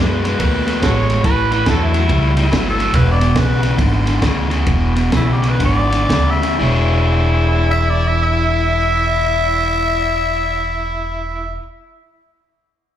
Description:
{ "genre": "electric blues shuffle", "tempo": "114-142 BPM", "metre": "4/4", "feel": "swing 64% on 8ths", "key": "E mixolydian", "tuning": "A4 = 439 Hz", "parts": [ { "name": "growling tenor saxophone", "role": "melody", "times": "0.0-11.6 s", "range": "E4 to E5", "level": "-20 LUFS", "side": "left 1 dB", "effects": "slapback echo" }, { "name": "overdriven semi-hollow guitar", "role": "riff", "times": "0.0-11.6 s", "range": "E2 to C#5", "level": "-20 LUFS", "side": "left 3 dB", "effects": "slapback echo" }, { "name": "upright bass", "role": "bass", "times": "0.0-11.6 s", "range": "E1 to F#2", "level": "-18 LUFS", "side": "equal", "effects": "none" }, { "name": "compact cocktail drum kit", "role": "drums", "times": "0.2-6.5 s", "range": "kick drum, ride cymbal, snare drum", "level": "-20 LUFS", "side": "right 1 dB", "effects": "none" }, { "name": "overdriven harmonica", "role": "second line", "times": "0.8-2.3, 6.6-11.6 s", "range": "E4 to C#5", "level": "-21 LUFS", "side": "right 2 dB", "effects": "slapback echo" } ], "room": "studio ambience", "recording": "live gig heard through the venue's PA, club ambience", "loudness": "-13 LUFS", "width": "side -10 dB against mid", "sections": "0.0-6.6 A section; 6.6-10.8 B section", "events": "slowing down 2.9-6.6", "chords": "0.0 B9; 1.2 A7; 2.9 E7; 6.6 E6", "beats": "0.40 0.82 | 1.25 1.67 2.09 2.51 | 2.94 3.36 3.79 4.22 | 4.67 5.13 5.61 6.10 | 6.61 7.14 7.67 8.20 | 8.73 9.25 9.78 10.31" }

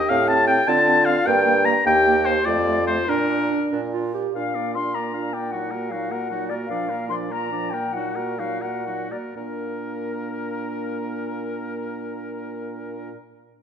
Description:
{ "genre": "quick classical-period movement for wind quintet", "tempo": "78-105 BPM (dotted quarters)", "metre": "6/8", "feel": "rubato", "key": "Bb major", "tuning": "A4 = 442 Hz", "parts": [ { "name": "clear oboe", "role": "second line", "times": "0.0-13.1 s", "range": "Gb4 to Bb5", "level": "-24 LUFS", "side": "left 2 dB", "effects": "none" }, { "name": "warm French horn", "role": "accompaniment", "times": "0.0-13.1 s", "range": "F3 to Bb4", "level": "-28 LUFS", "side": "right 1 dB", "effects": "none" }, { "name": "mellow bassoon", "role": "bass", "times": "0.0-13.1 s", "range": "Eb2 to D3", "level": "-27 LUFS", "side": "right 3 dB", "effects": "none" }, { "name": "concert flute", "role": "melody", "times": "0.1-13.1 s", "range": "Bb4 to C6", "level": "-28 LUFS", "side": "left 5 dB", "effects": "none" }, { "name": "mellow clarinet", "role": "accompaniment", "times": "0.1-13.1 s", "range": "A3 to G4", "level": "-31 LUFS", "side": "right 6 dB", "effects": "none" } ], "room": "wet recital hall reverb, RT60 1.7 s", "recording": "minimal, uncompressed stereo recording", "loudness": "-20 LUFS", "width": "side -8 dB against mid", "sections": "0.0-4.3 A section; 4.3-9.4 B section; 9.4-12.4 C section", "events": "slowing down 6.1-9.4", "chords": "0.1 Fadd9/A; 0.7 Dm7; 1.3 Gm; 1.9 Eb; 2.5 F; 3.1 Bb; 5.5 Ebm/Bb; 6.7 Bb; 7.9 Ebm/Bb; 9.4 Bb", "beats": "0.10 | 0.68 1.27 | 1.86 2.47 | 3.09 3.72 | 4.35 4.95 | 5.53 6.11 | 6.69 7.30 | 7.93 8.61 | 9.36 10.12 | 10.87 11.61" }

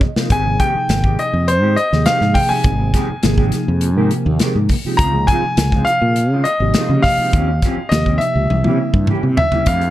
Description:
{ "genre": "electric jazz fusion", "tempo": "102 BPM", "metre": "4/4", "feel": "straight", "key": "Ab major", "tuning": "A4 = 439 Hz", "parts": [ { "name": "mellow tine electric piano", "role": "accompaniment", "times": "0.0-9.7 s", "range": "C3 to Eb5", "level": "-21 LUFS", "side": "right 1 dB", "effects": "slow stereo tremolo, ensemble chorus" }, { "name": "mellow electric guitar", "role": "stabs", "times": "0.0-9.9 s", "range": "Eb3 to G4", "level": "-26 LUFS", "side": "right 1 dB", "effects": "lush chorus" }, { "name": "modern studio drum kit", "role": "drums", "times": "0.0-9.9 s", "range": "hi-hat, kick drum, snare drum, toms", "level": "-18 LUFS", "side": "equal", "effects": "none" }, { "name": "fretless electric bass", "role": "bass", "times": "0.2-9.9 s", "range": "Ab1 to Db3", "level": "-17 LUFS", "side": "equal", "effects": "none" }, { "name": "bright baby grand piano", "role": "melody", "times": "0.3-9.9 s", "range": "C5 to Bb5", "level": "-18 LUFS", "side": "left 1 dB", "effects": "none" } ], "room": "light reverb, small room ambience", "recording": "dark, warm production", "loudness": "-13 LUFS", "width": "side -14 dB against mid", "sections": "0.0-9.7 A section", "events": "tine electric piano fill 0.0-0.3; drum fill 0.0-0.3, 8.5-9.7", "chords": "0.3 Abmaj7; 5.0 Dbmaj9; 7.3 Eb13; 8.5 C7b9", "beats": "| 0.31 0.89 1.48 2.06 | 2.65 3.23 3.82 4.40 | 4.99 5.58 6.16 6.75 | 7.33 7.92 8.50 9.09 | 9.67" }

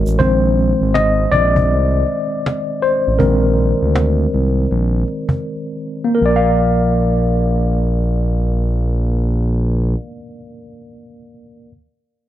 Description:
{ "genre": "lo-fi hip hop", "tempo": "80 BPM", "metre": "4/4", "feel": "swing 62% on 16ths", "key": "Bb mixolydian", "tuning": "A4 = 442 Hz", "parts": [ { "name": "tine electric piano", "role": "accompaniment", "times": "0.0-11.7 s", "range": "Eb3 to F5", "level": "-18 LUFS", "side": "left 1 dB", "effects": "overdrive, medium stereo tremolo, cassette tape, low-pass filter, plate reverb" }, { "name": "smooth gliding synth bass", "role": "bass", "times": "0.0-10.0 s", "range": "Ab1 to D2", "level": "-16 LUFS", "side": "equal", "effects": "none" }, { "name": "cajon", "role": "drums", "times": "0.2-5.4 s", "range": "none", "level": "-20 LUFS", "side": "equal", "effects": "vintage 12-bit sampler grit" } ], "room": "light reverb", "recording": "dark, warm production", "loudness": "-14 LUFS", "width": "side -12 dB against mid", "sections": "0.2-6.2 A section; 6.2-9.2 B section", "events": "tine electric piano solo 0.2-6.2; break 5.5-6.2", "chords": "0.2 Bb9sus4; 6.2 Bb", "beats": "| 0.20 0.95 1.70 2.45 | 3.20 3.95 4.70 5.45 | 6.20 6.95 7.70 8.45" }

